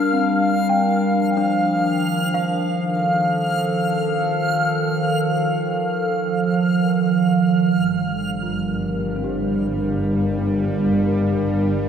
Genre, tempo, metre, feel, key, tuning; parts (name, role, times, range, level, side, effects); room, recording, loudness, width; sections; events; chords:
ambient; free time; G minor; A4 = 444 Hz
warbly tape-like pad; sustained chords; 0.0-11.9 s; Eb3 to F5; -19 LUFS; right 1 dB; chorus, built-in reverb
worn celesta; arpeggios; 0.0-11.9 s; C4 to G5; -29 LUFS; right 1 dB
backwards swelling texture; texture; 0.0-7.7 s; F6; -28 LUFS; equal; built-in reverb
dark studio double bass section; bass; 7.7-11.9 s; G1; -25 LUFS; equal
bowed-like drone; drone; 8.4-11.9 s; G3; -26 LUFS; equal; built-in reverb
wet cathedral reverb, RT60 6.6 s; in a vast, echoing space; -18 LUFS; side -8 dB against mid
0.0-7.7 A section; 7.7-11.9 A section
0.0 Gm7; 1.1 F7; 7.7 Gm7